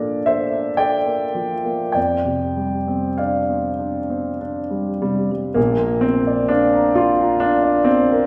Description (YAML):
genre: classical, impressionist solo piano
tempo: 48-68 BPM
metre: 3/4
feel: rubato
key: F major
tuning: A4 = 440 Hz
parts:
  - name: warm concert grand piano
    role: solo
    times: 0.0-8.3 s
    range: Bb1 to C6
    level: -19 LUFS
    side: equal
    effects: none
room: wet recital hall reverb, RT60 1.3 s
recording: heard from further back in the room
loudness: -19 LUFS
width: mono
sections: 0.0-5.6 A section; 5.6-8.3 B section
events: none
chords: 0.0 Bbmaj7; 2.0 Fsus2; 5.6 Bbadd9